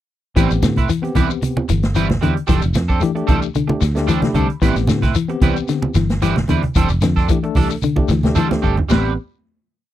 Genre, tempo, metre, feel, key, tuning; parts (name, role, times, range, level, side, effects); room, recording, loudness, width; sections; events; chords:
afrobeat; 112 BPM; 4/4; swing 53% on 16ths; A minor; A4 = 440 Hz
barky tine electric piano; accompaniment; 0.4-9.2 s; A3 to B5; -23 LUFS; left 2 dB; fast stereo tremolo
semi-hollow electric guitar; arpeggios; 0.4-9.1 s; A2 to E3; -21 LUFS; left 6 dB
electric guitar at the edge of break-up; stabs; 0.4-9.1 s; G3 to B4; -23 LUFS; right 7 dB; analog chorus
fingered electric bass; bass; 0.4-9.2 s; F1 to A2; -19 LUFS; right 1 dB
vintage drum kit; drums; 0.4-9.0 s; hi-hat, kick drum, snare drum, toms; -20 LUFS; right 1 dB
shekere; percussion; 0.4-9.0 s; -25 LUFS; left 3 dB
congas; percussion; 0.6-9.0 s; -22 LUFS; right 3 dB
little or no reverb; dry, close 1970s-style studio recording; -15 LUFS; side -12 dB against mid
0.4-8.9 groove; 8.9-9.9 final chord
tine electric piano fill 3.8-4.6; drum fill 8.2-8.9
0.4 Am9; 2.5 F69; 4.6 Am9; 6.8 F69; 8.9 Am9